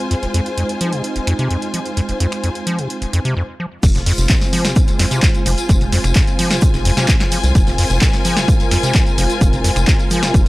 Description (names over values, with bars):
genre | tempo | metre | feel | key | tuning
acid house | 129 BPM | 4/4 | straight | F minor | A4 = 439 Hz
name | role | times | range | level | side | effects
warm analog pad | sustained chords | 0.0-10.5 s | Ab3 to C5 | -26 LUFS | right 3 dB | chorus, sidechain pumping
warm symphonic string section | texture | 0.0-10.5 s | F4 to Ab5 | -24 LUFS | left 2 dB | sidechain pumping
acid bass, square | riff | 0.1-10.5 s | F1 to F3 | -20 LUFS | equal | overdrive, sidechain pumping
punchy analog drum machine | drums | 0.1-10.5 s | crash cymbal, finger snaps, handclaps, hi-hat, snare drum, tambourine | -21 LUFS | equal | none
round analog bass | bass | 3.8-10.5 s | F1 to C2 | -18 LUFS | equal | tube saturation, sidechain pumping
electronic kick drum | drums | 3.8-10.4 s | none | -15 LUFS | equal | none
natural country drum kit | drums | 3.8-10.5 s | hi-hat, shaker, snare drum | -31 LUFS | equal | none
room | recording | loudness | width
small room ambience | dry, gritty hardware recording | -14 LUFS | side -19 dB against mid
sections
0.0-3.8 A section; 3.8-10.5 B section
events
break 3.4-3.8; drop 3.8-10.5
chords
0.0 Fm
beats
| 0.11 0.57 1.04 1.50 | 1.97 2.44 2.90 3.37 | 3.83 4.30 4.76 5.23 | 5.69 6.16 6.62 7.09 | 7.55 8.02 8.48 8.95 | 9.41 9.88 10.34